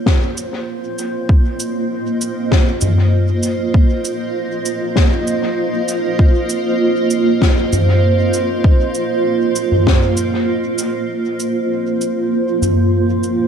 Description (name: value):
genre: ambient dub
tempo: 98 BPM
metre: 4/4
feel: straight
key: Bb minor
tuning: A4 = 439 Hz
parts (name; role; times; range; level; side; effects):
- granular cloud pad; sustained chords; 0.0-13.5 s; Bb3 to Eb5; -17 LUFS; right 2 dB; built-in reverb
- electronic kick drum; drums; 0.1-10.0 s; none; -12 LUFS; equal; none
- soft-mallet drum kit; drums; 0.1-13.4 s; cabasa, snare drum, toms; -17 LUFS; left 2 dB; dub echo
room: light reverb, small room ambience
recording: dark, warm production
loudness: -14 LUFS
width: side -7 dB against mid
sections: 0.0-11.1 A section; 11.1-13.5 B section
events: fade-in on ambient pad 0.0-11.1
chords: 0.0 Bbm